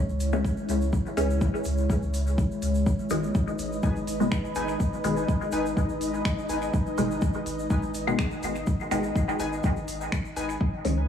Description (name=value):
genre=dub techno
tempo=124 BPM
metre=4/4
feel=straight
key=unclear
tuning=A4 = 440 Hz
part: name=deep dark ambient pad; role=sustained chords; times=0.0-10.6 s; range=G#3 to C#5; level=-32 LUFS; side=equal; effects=chorus, built-in reverb, sidechain pumping
part: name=warm sub bass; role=bass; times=0.1-11.1 s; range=G#1 to C#2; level=-30 LUFS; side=equal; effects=sidechain pumping
part: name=tube shaker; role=percussion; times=0.1-10.6 s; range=none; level=-45 LUFS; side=right 3 dB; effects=none
part: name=deep house drum kit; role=drums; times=0.2-10.9 s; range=finger snaps, hi-hat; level=-38 LUFS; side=equal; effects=dub echo
part: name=filtered dub chord stab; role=stabs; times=0.3-11.0 s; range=B2 to C#4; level=-30 LUFS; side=left 1 dB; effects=phaser, vintage 12-bit sampler grit, sidechain pumping, dub echo
part: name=electronic kick drum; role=drums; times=0.4-10.7 s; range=none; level=-26 LUFS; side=equal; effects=none
part: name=flickering grainy texture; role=texture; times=3.2-10.6 s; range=D#4 to D#5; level=-35 LUFS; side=left 3 dB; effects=built-in reverb, sidechain pumping
part: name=warbly lo-fi synth keys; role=riff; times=3.8-10.6 s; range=D#4 to G#5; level=-35 LUFS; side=left 2 dB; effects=chorus, sidechain pumping, dub echo
room=moderate echo chamber reverb, RT60 2.2 s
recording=small room ambience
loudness=-24 LUFS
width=side -8 dB against mid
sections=0.0-10.6 A section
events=none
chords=0.0 C#m; 2.9 G#m